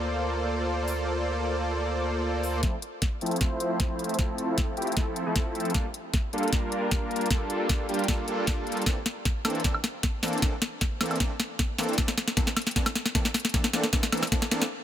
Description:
future bass; 154 BPM; 4/4; half-time; F major; A4 = 441 Hz
supersaw chords; riff; 0.0-14.6 s; E3 to D5; -29 LUFS; equal; vintage 12-bit sampler grit, sidechain pumping, low-pass filter, digital delay
saturated sub bass; bass; 0.0-2.6 s; D2; -32 LUFS; equal; sidechain pumping
trap drum kit; drums; 0.9-14.7 s; hi-hat, snare drum, woodblock; -28 LUFS; left 1 dB
electronic kick drum; drums; 2.6-14.4 s; -28 LUFS; equal
light reverb; -25 LUFS; side -10 dB against mid
0.0-2.6 A section; 2.6-14.8 B section
build-up 2.6-14.8; drum fill 2.6-14.7; filter sweep on supersaw synth 2.6-14.8
0.0 Bbmaj9/D; 2.6 Fmaj7; 5.7 Gm9; 8.9 C13

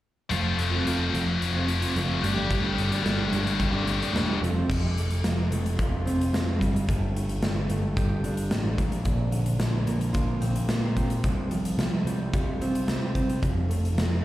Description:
quiet-loud alternative rock; 110 BPM; 4/4; straight; F major; A4 = 439 Hz
fingerpicked steel-string acoustic guitar; arpeggios; 0.3-14.2 s; Bb2 to G4; -30 LUFS; right 2 dB; slapback echo
scooped high-gain guitar; riff; 0.3-4.4 s; F3 to G4; -27 LUFS; left 6 dB; distortion
overdriven picked electric bass; bass; 0.3-14.2 s; E1 to C3; -28 LUFS; equal
big rock drum kit; drums; 0.3-14.1 s; crash cymbal, hi-hat, kick drum, snare drum; -29 LUFS; equal
little or no reverb; live gig heard through the venue's PA, recital hall reverb; -23 LUFS; side -15 dB against mid
0.3-4.7 A section; 4.7-14.2 B section
0.3 F; 2.2 Gsus2; 4.4 F; 6.6 Gsus2; 8.8 Bbadd9; 11.2 Csus4; 13.4 F

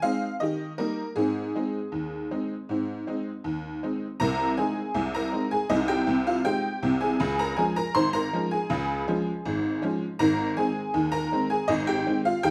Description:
ragtime piano; 80 BPM; 2/4; straight; Ab major; A4 = 440 Hz
tack piano; solo; 0.0-12.5 s; Ab1 to C6; -27 LUFS; equal
moderate echo chamber reverb, RT60 1.5 s; -27 LUFS; mono
0.0-4.2 A section; 4.2-12.5 B section
0.4 Eb; 1.2 Ab; 4.2 Ab/C; 7.2 Db; 10.2 Ab

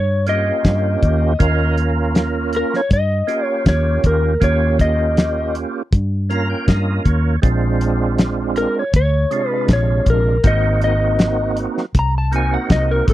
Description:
straight-eighth soul blues; 80 BPM; 4/4; straight; Eb mixolydian; A4 = 440 Hz
electric slide guitar; melody; 0.0-13.1 s; A4 to Bb5; -20 LUFS; left 1 dB
vintage muted fingered electric bass; bass; 0.0-13.1 s; Ab1 to G2; -18 LUFS; equal
percussive tonewheel organ; accompaniment; 0.3-13.1 s; C3 to Bb5; -21 LUFS; right 5 dB; slow rotary speaker, overdrive, chorus vibrato
cloth-damped thuddy drum kit; drums; 0.3-13.1 s; hi-hat, kick drum, snare drum; -15 LUFS; equal
little or no reverb; dry, close 1970s-style studio recording; -15 LUFS; side -14 dB against mid
0.0-13.1 A section
tonewheel organ fill 5.9-7.4
0.0 Eb9; 7.4 Bb9; 10.4 Ab9

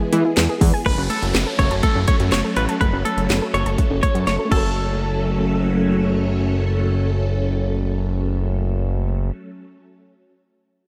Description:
synth-pop; 123 BPM; 4/4; straight; F# minor; A4 = 440 Hz
phased string machine; sustained chords; 0.0-9.3 s; E3 to A4; -27 LUFS; equal; ensemble chorus, phaser
soft round pluck; arpeggios; 0.1-9.4 s; G#3 to A5; -29 LUFS; equal; chorus, tape echo
fat analog bass; bass; 0.1-9.3 s; F#1 to E3; -23 LUFS; equal
house drum kit; drums; 0.1-4.6 s; crash cymbal, hi-hat, kick drum, snare drum; -23 LUFS; equal
direct-recorded clean electric guitar; second line; 0.9-6.2 s; A4 to C#5; -27 LUFS; equal; analog chorus, tape echo
downlifter; sound effects; 0.9-4.8 s; -35 LUFS; equal
light reverb, digital ambience; -20 LUFS; mono
0.9-4.8 A section; 4.8-8.7 B section
drum fill 4.3-4.8
0.0 E; 0.9 F#m

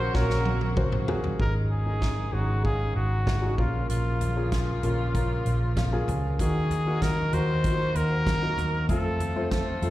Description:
piano-driven pop; 96 BPM; 4/4; straight; Bb minor; A4 = 441 Hz
clear trumpet; melody; 0.0-9.9 s; F4 to C5; -32 LUFS; equal; slapback echo, tape echo
warm grand piano; accompaniment; 0.0-9.9 s; Ab2 to Ab5; -31 LUFS; left 2 dB; slapback echo
warm studio string section; sustained chords; 0.0-9.9 s; C3 to Gb4; -37 LUFS; equal
vintage muted fingered electric bass; bass; 0.0-9.9 s; Ab1 to F2; -27 LUFS; equal
natural country drum kit; drums; 0.1-9.9 s; hi-hat, kick drum, snare drum, toms; -29 LUFS; equal
small room ambience; live gig heard through the venue's PA, recital hall reverb; -23 LUFS; side -15 dB against mid
0.0-1.4 A section; 1.4-9.9 B section
drum fill 0.1-1.4; grand piano fill 5.5-6.4
0.0 Gb/Bb; 1.4 Absus4; 3.6 Bbm; 6.4 Ebm; 8.9 F

